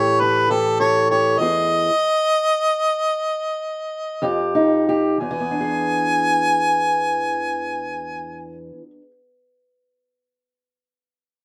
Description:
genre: acoustic country blues, solo or duo.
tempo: 59-67 BPM (dotted quarters).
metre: 12/8.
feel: straight.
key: unclear.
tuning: A4 = 443 Hz.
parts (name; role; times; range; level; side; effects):
mellow harmonica; melody; 0.0-8.6 s; A4 to G#5; -21 LUFS; equal; none.
fingerpicked steel-string acoustic guitar; accompaniment; 0.0-9.1 s; E2 to A4; -23 LUFS; equal; none.
room: little or no reverb.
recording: recorded outdoors, with no room sound.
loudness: -20 LUFS.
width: mono.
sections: 0.0-5.2 A section; 5.2-9.3 B section.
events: slowing down 0.2-5.2; stop 1.4-4.2.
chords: 0.0 A5; 1.4 E; 4.2 Fsus2; 5.2 E7.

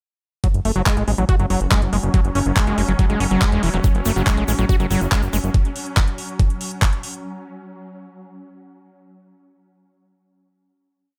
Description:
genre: psychedelic trance.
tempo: 141 BPM.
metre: 4/4.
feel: straight.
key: F# minor.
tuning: A4 = 444 Hz.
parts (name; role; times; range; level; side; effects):
swarming drone; sustained chords; 1.1-7.3 s; F#3 to C#4; -31 LUFS; equal; built-in reverb, sidechain pumping.
overdriven acid bass; riff; 0.4-5.4 s; E3 to F#4; -25 LUFS; equal; distortion, sidechain pumping, dub echo.
electronic kick drum; drums; 0.4-6.9 s; none; -19 LUFS; equal; studio reverb.
garage drum kit; drums; 0.4-7.2 s; handclaps, hi-hat; -28 LUFS; equal; studio reverb.
fat analog bass; bass; 0.5-5.5 s; E1 to A1; -23 LUFS; equal; none.
egg shaker; percussion; 3.8-5.5 s; none; -37 LUFS; equal; none.
room: little or no reverb.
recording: none.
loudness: -19 LUFS.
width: mono.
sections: 0.4-7.2 groove.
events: none.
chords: 0.4 F#5.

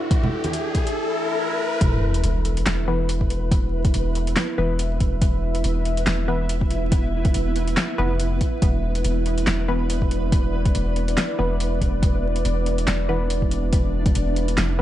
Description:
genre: deep dubstep.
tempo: 141 BPM.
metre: 4/4.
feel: swing 56% on 16ths, half-time.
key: unclear.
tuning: A4 = 440 Hz.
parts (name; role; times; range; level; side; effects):
deep dark ambient pad; sustained chords; 0.0-14.8 s; E4 to E5; -28 LUFS; right 1 dB; chorus, built-in reverb.
riser, swell and sub drop; sound effects; 0.0-3.5 s; none; -26 LUFS; left 1 dB; none.
flickering grainy texture; texture; 0.0-14.8 s; B3 to D5; -33 LUFS; equal; built-in reverb.
deep house drum kit; drums; 0.1-14.7 s; handclaps, hi-hat, snare drum; -26 LUFS; equal; studio reverb.
electronic kick drum; drums; 0.1-14.1 s; none; -20 LUFS; equal; studio reverb.
congas; percussion; 0.2-0.5 s; none; -27 LUFS; right 2 dB; none.
soft dub sub bass; bass; 1.8-14.8 s; E1 to F1; -23 LUFS; equal; none.
filtered dub chord stab; stabs; 2.9-14.8 s; E3 to B4; -29 LUFS; left 2 dB; chorus, cassette tape, dub echo.
room: light reverb, digital ambience.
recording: dark, warm production, vinyl crackle, nothing above 10.6 kHz.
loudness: -19 LUFS.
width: side -13 dB against mid.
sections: 0.0-1.8 A section; 1.8-14.8 B section.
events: build-up 0.0-1.8; riser 0.0-1.8; swell 1.0-1.8; drop 1.8-14.8; impact 1.8-3.5.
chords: 0.0 E5.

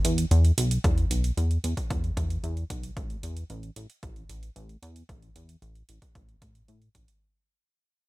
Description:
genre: synthwave.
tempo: 113 BPM.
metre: 4/4.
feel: straight.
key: unclear.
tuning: A4 = 440 Hz.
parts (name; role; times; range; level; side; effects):
chorused synth bass; bass; 0.0-7.1 s; A1 to A2; -25 LUFS; equal; tube saturation, sidechain pumping.
electronic hi-hat; drums; 0.0-7.2 s; none; -36 LUFS; right 4 dB; none.
electronic kick drum; drums; 0.8-7.1 s; none; -30 LUFS; equal; none.
room: little or no reverb.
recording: bright 1980s-style digital production.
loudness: -24 LUFS.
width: side -19 dB against mid.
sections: 0.0-7.2 A section.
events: fade-out 0.0-7.2.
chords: none.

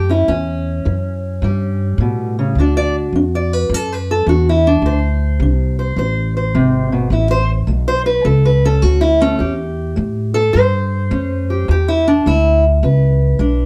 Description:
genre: acoustic country blues, solo or duo.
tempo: 105 BPM.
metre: 4/4.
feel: swing 66% on 8ths.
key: unclear.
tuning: A4 = 436 Hz.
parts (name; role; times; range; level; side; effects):
fingerpicked steel-string acoustic guitar; melody; 0.0-13.7 s; E2 to D5; -19 LUFS; equal; none.
upright bass; bass; 0.0-13.7 s; G#1 to A2; -18 LUFS; equal; none.
room: light reverb.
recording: dark, warm production.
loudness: -16 LUFS.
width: mono.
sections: 0.0-13.7 A section.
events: steel-string acoustic guitar solo 0.0-13.7.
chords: 0.0 A7; 2.6 D; 4.8 D5; 7.1 A7; 11.7 E7.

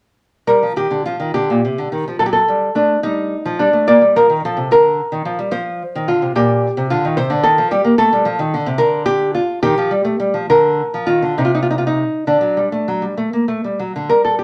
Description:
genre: classical, baroque-style dance for nylon-string guitar.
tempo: 64-75 BPM (dotted quarters).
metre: 6/8.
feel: rubato.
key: G minor.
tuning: A4 = 441 Hz.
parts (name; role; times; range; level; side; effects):
nylon-string guitar; solo; 0.5-14.4 s; Bb2 to D5; -16 LUFS; equal; none.
room: wet studio reverb, RT60 0.7 s.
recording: none.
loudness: -16 LUFS.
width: mono.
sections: 0.5-14.1 A section.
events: none.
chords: 0.5 Gm; 2.2 Dadd11/F#; 3.0 F13; 3.9 Bb; 5.5 F5; 6.4 Bb; 7.2 Cm; 8.0 F; 8.8 N.C.; 9.6 Eb; 10.5 Bb/D; 11.4 N.C.; 12.3 D.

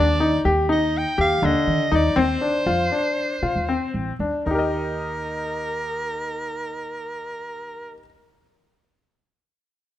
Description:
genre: contemporary instrumental, contemporary.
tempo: 229-247 BPM (eighths).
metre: 9/8.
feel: straight.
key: Eb major.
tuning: A4 = 440 Hz.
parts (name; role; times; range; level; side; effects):
raspy soprano saxophone; melody; 0.0-7.9 s; Bb4 to G5; -26 LUFS; right 2 dB; none.
bright concert grand piano; arpeggios; 0.0-8.1 s; D3 to Eb5; -22 LUFS; left 2 dB; none.
upright bass; bass; 0.0-7.9 s; A1 to Eb3; -26 LUFS; right 1 dB; none.
room: light reverb.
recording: close, detailed microphones.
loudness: -20 LUFS.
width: side -12 dB against mid.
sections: 0.0-4.5 A section; 4.5-9.2 B section.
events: slowing down 0.4-4.5.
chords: 0.0 Ebmaj7; 2.2 Dm7/Eb; 4.5 Eb.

